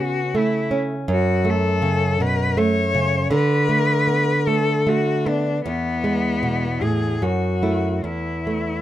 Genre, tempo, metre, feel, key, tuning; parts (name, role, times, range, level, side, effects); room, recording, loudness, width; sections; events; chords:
romantic duo for cello and classical guitar; 71-82 BPM; 3/4; rubato; A4 = 438 Hz
rich cello; melody; 0.0-8.8 s; B3 to C#5; -23 LUFS; left 5 dB
nylon-string guitar; accompaniment; 0.0-8.8 s; E2 to E4; -20 LUFS; right 2 dB
little or no reverb; rough home demo mix; -18 LUFS; side -13 dB against mid
0.0-8.8 A section
0.0 A/C#; 1.1 F#m; 3.3 Bm7/D; 5.6 E; 7.2 F#m7; 8.0 Esus4